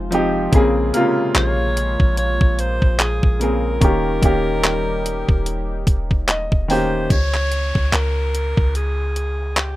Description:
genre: contemporary R&B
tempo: 73 BPM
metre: 4/4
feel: swing 58% on 16ths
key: unclear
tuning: A4 = 440 Hz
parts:
  - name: bright alto saxophone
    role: melody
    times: 0.0-9.8 s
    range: G4 to Db5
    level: -24 LUFS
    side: equal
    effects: digital delay
  - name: clear grand piano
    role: accompaniment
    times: 0.0-7.1 s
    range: C3 to G5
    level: -20 LUFS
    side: equal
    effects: none
  - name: warm analog pad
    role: sustained chords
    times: 0.0-7.1 s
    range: Bb2 to G4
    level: -31 LUFS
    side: equal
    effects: chorus
  - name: warm 808-style bass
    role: bass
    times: 0.0-9.8 s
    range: Eb1 to Db2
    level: -22 LUFS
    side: equal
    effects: none
  - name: detuned 8-bit digital drum machine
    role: drums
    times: 0.1-9.8 s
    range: handclaps, hi-hat, kick drum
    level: -18 LUFS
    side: equal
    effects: none
  - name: worn celesta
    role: texture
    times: 0.9-6.6 s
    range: Db6 to F6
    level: -34 LUFS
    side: equal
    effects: none
  - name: downlifter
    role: sound effects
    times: 7.1-9.8 s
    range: none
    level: -32 LUFS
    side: left 1 dB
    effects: none
room: little or no reverb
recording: rough home demo mix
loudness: -16 LUFS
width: side -16 dB against mid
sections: 0.0-7.1 A section; 7.1-9.8 B section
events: grand piano fill 5.9-7.1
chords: 0.0 Fm7; 0.5 Bbm9; 3.8 Eb7; 7.1 Db5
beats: | 0.53 1.35 2.17 2.99 | 3.81 4.64 5.46 6.28 | 7.10 7.92 8.75 9.57

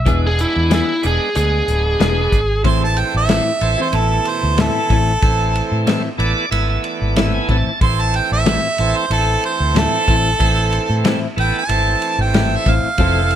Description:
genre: straight-eighth soul blues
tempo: 93 BPM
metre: 4/4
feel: swing 53% on 16ths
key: A harmonic minor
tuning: A4 = 439 Hz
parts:
  - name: biting lead guitar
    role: melody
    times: 0.0-2.6 s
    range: E4 to E5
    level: -19 LUFS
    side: equal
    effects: overdrive
  - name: vintage muted fingered electric bass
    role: bass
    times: 0.0-13.4 s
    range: D1 to A2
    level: -18 LUFS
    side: equal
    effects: none
  - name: bright tonewheel organ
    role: accompaniment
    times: 0.1-13.4 s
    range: B2 to A5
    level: -22 LUFS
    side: right 4 dB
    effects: overdrive, slow rotary speaker
  - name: direct-recorded clean electric guitar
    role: stabs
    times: 0.1-13.2 s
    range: A2 to A4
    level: -22 LUFS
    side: left 5 dB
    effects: lush chorus
  - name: warm soul drum kit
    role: drums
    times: 0.1-13.4 s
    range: hi-hat, kick drum, ride cymbal, snare drum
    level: -21 LUFS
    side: equal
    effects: none
  - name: bright harmonica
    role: second line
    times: 2.7-13.4 s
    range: A4 to C6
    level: -19 LUFS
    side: right 2 dB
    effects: overdrive
  - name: warm horn section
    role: sustained chords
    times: 13.0-13.4 s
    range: C4 to F5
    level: -27 LUFS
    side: right 1 dB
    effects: none
room: light reverb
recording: none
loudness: -14 LUFS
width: side -10 dB against mid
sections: 0.0-2.6 A section; 2.6-13.4 B section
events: harmonica solo 2.6-13.4; tonewheel organ fill 5.9-7.8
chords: 0.1 E7; 2.6 Am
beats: | 0.06 0.71 1.35 2.00 | 2.64 3.29 3.94 4.58 | 5.23 5.88 6.52 7.17 | 7.82 8.46 9.11 9.76 | 10.40 11.05 11.70 12.35 | 12.99

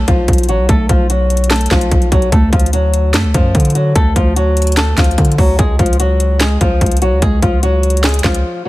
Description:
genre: hip hop, trap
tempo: 147 BPM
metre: 4/4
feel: half-time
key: unclear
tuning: A4 = 441 Hz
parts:
  - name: flamenco guitar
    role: melody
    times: 0.0-8.7 s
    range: E#3 to A4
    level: -16 LUFS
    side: left 1 dB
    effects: low-pass filter, ping-pong delay
  - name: long sustained 808-style bass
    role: bass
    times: 0.0-8.4 s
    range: A1 to D3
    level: -14 LUFS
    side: equal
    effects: none
  - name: trap drum kit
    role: drums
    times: 0.1-8.4 s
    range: handclaps, hi-hat, kick drum, snare drum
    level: -14 LUFS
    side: equal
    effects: none
room: little or no reverb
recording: none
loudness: -10 LUFS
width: side -17 dB against mid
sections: 0.0-8.7 A section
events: break 8.4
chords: 0.0 B5; 2.3 D; 5.6 C#sus4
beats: 0.28 | 0.69 1.10 1.51 1.92 | 2.32 2.73 3.14 3.55 | 3.96 4.36 4.77 5.18 | 5.59 6.00 6.41 6.81 | 7.22 7.63 8.04 8.45

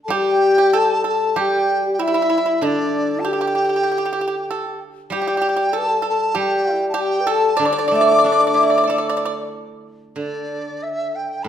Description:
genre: chinese traditional, Chinese chamber ensemble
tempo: 96 BPM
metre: 4/4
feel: rubato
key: unclear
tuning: A4 = 440 Hz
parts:
  - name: dizi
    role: melody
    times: 0.0-11.5 s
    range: D5 to D6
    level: -20 LUFS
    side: equal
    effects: none
  - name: breathy mellow low xiao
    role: second line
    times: 0.1-9.5 s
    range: D4 to D5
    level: -21 LUFS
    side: left 4 dB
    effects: none
  - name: pipa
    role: second line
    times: 0.1-9.3 s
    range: D4 to D5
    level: -24 LUFS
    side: right 4 dB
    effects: none
  - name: steel-string zither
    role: accompaniment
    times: 0.1-11.5 s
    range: A2 to A4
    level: -24 LUFS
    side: right 3 dB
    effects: none
room: wet recital hall reverb, RT60 1.4 s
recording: none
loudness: -16 LUFS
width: side -9 dB against mid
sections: 0.1-10.2 A section; 10.2-11.5 B section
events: none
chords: none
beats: | 0.12 0.75 1.38 2.01 | 2.63 3.26 3.88 4.50 | 5.12 5.74 6.35 6.97 | 7.59 8.22 8.86 9.51 | 10.17 10.81 11.45

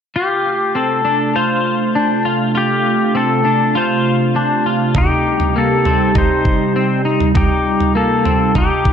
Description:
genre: dream pop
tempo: 100 BPM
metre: 4/4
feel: straight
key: unclear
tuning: A4 = 440 Hz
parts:
  - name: warbly tape-like pad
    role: sustained chords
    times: 0.1-8.9 s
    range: C3 to G4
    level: -18 LUFS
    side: right 2 dB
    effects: chorus, built-in reverb
  - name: pedal steel guitar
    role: melody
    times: 0.2-8.9 s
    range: G4 to C5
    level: -18 LUFS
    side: left 3 dB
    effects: digital delay
  - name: clean electric guitar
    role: arpeggios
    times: 0.2-8.9 s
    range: Bb3 to F4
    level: -19 LUFS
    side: left 4 dB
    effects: analog chorus, digital delay
  - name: detuned 8-bit digital drum machine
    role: drums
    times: 4.9-8.9 s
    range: kick drum, toms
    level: -17 LUFS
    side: right 1 dB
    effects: none
room: moderate plate reverb, RT60 2.4 s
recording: dark, warm production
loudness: -13 LUFS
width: side -8 dB against mid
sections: 0.2-8.9 A section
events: none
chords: 0.2 Dm7; 5.0 Cm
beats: | 0.15 0.75 1.35 1.95 | 2.55 3.15 3.75 4.35 | 4.95 5.55 6.15 6.75 | 7.35 7.95 8.55

